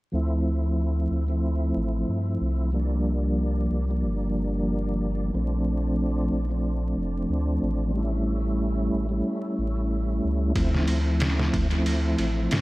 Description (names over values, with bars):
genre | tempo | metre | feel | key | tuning
trip hop | 92 BPM | 4/4 | swing 53% on 16ths | D minor | A4 = 440 Hz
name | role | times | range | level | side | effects
mellow tonewheel organ | accompaniment | 0.1-12.6 s | F3 to E4 | -27 LUFS | equal | chorus vibrato, slow rotary speaker, harmonic tremolo, tape echo
warm sub bass | bass | 0.1-12.6 s | F1 to G2 | -26 LUFS | equal | none
trip hop sampler-style drum kit | drums | 10.6-12.6 s | kick drum, ride cymbal, snare drum | -27 LUFS | equal | tape echo
room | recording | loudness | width
little or no reverb | echo-heavy mix, vinyl crackle | -23 LUFS | side -20 dB against mid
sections
0.1-10.6 A section; 10.6-12.6 B section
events
none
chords
0.1 Dm7; 2.7 C7sus4; 5.3 Bbmaj7; 8.0 A7; 10.6 Dm7